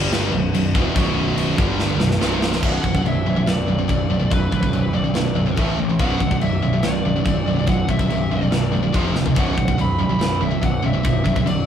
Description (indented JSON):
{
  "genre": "heavy metal",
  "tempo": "143 BPM",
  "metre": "4/4",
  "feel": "straight",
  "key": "B phrygian",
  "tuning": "A4 = 440 Hz",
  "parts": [
    { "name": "high-gain distorted guitar", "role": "riff", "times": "0.0-11.6 s", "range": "B1 to A3", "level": "-25 LUFS", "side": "left 7 dB", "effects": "distortion" },
    { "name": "high-gain distorted guitar", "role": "riff", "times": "0.0-11.7 s", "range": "B1 to A3", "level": "-22 LUFS", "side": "right 6 dB", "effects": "distortion" },
    { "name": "fuzz picked electric bass", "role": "bass", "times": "0.0-11.6 s", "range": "B0 to A1", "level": "-25 LUFS", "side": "left 1 dB", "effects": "overdrive" },
    { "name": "tight metal drum kit", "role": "drums", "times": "0.1-11.6 s", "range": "china cymbal, crash cymbal, kick drum, snare drum, toms", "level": "-23 LUFS", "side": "left 1 dB", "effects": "none" },
    { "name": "high-gain lead guitar", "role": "melody", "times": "2.7-11.7 s", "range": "B4 to B5", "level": "-27 LUFS", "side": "left 1 dB", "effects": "distortion" }
  ],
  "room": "moderate studio reverb, RT60 0.6 s",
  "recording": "band playing live in one room",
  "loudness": "-17 LUFS",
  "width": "side -9 dB against mid",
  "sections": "0.0-2.6 A section; 2.6-11.7 B section",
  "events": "drum fill 1.8-2.6, 9.2",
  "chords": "0.3 B5; 1.6 G5; 2.0 B5; 2.2 C5; 2.6 Bm; 5.6 A5; 6.0 Bm; 8.9 F5; 9.4 B5"
}